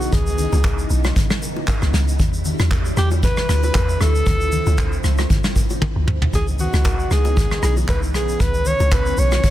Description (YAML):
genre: amapiano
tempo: 116 BPM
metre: 4/4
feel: swing 55% on 16ths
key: C# minor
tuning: A4 = 440 Hz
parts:
  - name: breathy alto saxophone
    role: melody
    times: 0.0-9.5 s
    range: F#4 to C#5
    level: -24 LUFS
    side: equal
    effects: tape echo
  - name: soft string machine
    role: sustained chords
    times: 0.0-9.5 s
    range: C#3 to E4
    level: -28 LUFS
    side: equal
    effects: ensemble chorus, sidechain pumping
  - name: deep log drum bass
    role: bass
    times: 0.0-9.4 s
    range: B1 to E2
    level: -19 LUFS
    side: equal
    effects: none
  - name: vintage brush drum kit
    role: drums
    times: 0.0-9.5 s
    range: handclaps, hi-hat, kick drum, rim click, shaker, snare drum, toms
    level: -20 LUFS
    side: equal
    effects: soft clipping on snare
  - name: congas and bongos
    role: percussion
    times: 0.1-9.5 s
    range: none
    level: -29 LUFS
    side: left 5 dB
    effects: none
room: small room ambience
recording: dense, heavily limited modern master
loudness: -16 LUFS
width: side -13 dB against mid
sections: 0.0-9.5 A section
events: drum fill 5.8-6.3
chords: 0.0 C#m9; 2.2 Em9; 4.0 Dm9; 6.3 C#m9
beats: | 0.13 0.64 1.16 1.68 | 2.20 2.71 3.23 3.75 | 4.26 4.78 5.30 5.82 | 6.33 6.85 7.37 7.89 | 8.40 8.92 9.44